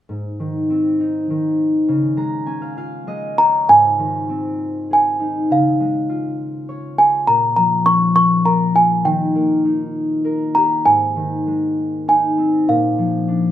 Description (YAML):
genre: children's music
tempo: 100 BPM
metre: 3/4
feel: rubato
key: Ab major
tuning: A4 = 440 Hz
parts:
  - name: concert harp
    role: accompaniment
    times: 0.1-13.5 s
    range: Ab2 to Bb5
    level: -19 LUFS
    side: left 2 dB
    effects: none
  - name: small celesta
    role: melody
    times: 3.4-13.5 s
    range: F5 to Db6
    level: -14 LUFS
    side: right 1 dB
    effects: none
room: wet small room reverb, RT60 0.5 s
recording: rough home demo mix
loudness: -15 LUFS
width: side -12 dB against mid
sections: 0.1-3.7 A section; 3.7-13.5 B section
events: harp fill 1.9-3.7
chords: 0.1 Ab; 1.9 Db; 3.7 Ab; 5.5 Db; 7.3 Bbm; 9.1 Eb; 10.9 Ab; 12.7 Bb